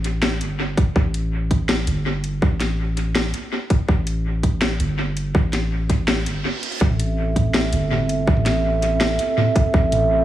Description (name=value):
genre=half-time drum and bass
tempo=164 BPM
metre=4/4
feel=half-time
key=A minor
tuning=A4 = 440 Hz
part: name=long sustained 808-style bass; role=bass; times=0.0-10.2 s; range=G1 to A1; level=-22 LUFS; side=equal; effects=none
part: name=drum and bass drum kit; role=drums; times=0.0-10.0 s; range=hi-hat, snare drum, toms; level=-24 LUFS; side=equal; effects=overdrive, dub echo
part: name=electronic kick drum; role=drums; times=0.8-9.8 s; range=none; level=-17 LUFS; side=equal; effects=overdrive
part: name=reverse cymbal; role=sound effects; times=6.2-6.8 s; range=none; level=-31 LUFS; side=right 4 dB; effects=none
part: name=dark analog pad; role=sustained chords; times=6.8-10.2 s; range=C4 to E5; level=-21 LUFS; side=right 3 dB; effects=chorus, sidechain pumping
room=moderate plate reverb, RT60 1.6 s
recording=echo-heavy mix, small room ambience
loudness=-18 LUFS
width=side -13 dB against mid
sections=0.0-10.2 A section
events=reverse cymbal 6.2-6.8; break 6.4-6.8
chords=0.0 Am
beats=0.23 0.59 | 0.96 1.32 1.69 2.06 | 2.42 2.79 3.15 3.52 | 3.89 4.25 4.62 4.98 | 5.35 5.71 6.08 6.45 | 6.81 7.18 7.54 7.91 | 8.28 8.64 9.01 9.37 | 9.74 10.11